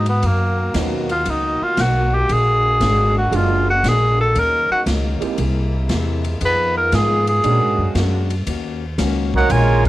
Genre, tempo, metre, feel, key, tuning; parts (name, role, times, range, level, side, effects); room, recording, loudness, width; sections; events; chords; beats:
jazz, big band swing; 116 BPM; 4/4; swing 68% on 8ths; Eb minor; A4 = 440 Hz
warm tenor saxophone; melody; 0.0-7.9 s; A#3 to Cb5; -17 LUFS; equal; cassette tape
picked plugged-in steel-string acoustic guitar; accompaniment; 0.0-9.9 s; Bb2 to Ab4; -29 LUFS; left 9 dB; cassette tape
mellow saxophone section; sustained chords; 0.0-8.5 s; B2 to Gb4; -28 LUFS; equal; cassette tape
upright bass; bass; 0.0-9.9 s; Gb1 to Bb2; -19 LUFS; equal
swinging big-band drum kit; drums; 0.1-9.9 s; crash cymbal, hi-hat, kick drum, ride cymbal, snare drum; -27 LUFS; equal; cassette tape
warm grand piano; accompaniment; 0.7-8.2 s; Ab3 to Bb4; -25 LUFS; right 9 dB; cassette tape
bright trombone section; second line; 9.3-9.9 s; Ab3 to Gb4; -21 LUFS; right 11 dB; cassette tape
clear trumpet section; melody; 9.4-9.9 s; Eb4 to Ab5; -16 LUFS; right 1 dB; cassette tape
light reverb; home recording on cassette; -15 LUFS; side -16 dB against mid
0.0-8.5 A section; 8.5-9.9 B section
tenor saxophone solo 0.0-8.5
0.2 Bmaj7; 2.3 Bb7b13; 4.4 Ebm7; 5.4 C7b13; 6.4 Fm7b5; 7.4 Bb7alt; 8.5 Ebm7
| 0.23 0.75 1.26 1.78 | 2.29 2.81 3.33 3.84 | 4.36 4.87 5.39 5.90 | 6.42 6.93 7.45 7.96 | 8.47 8.99 9.50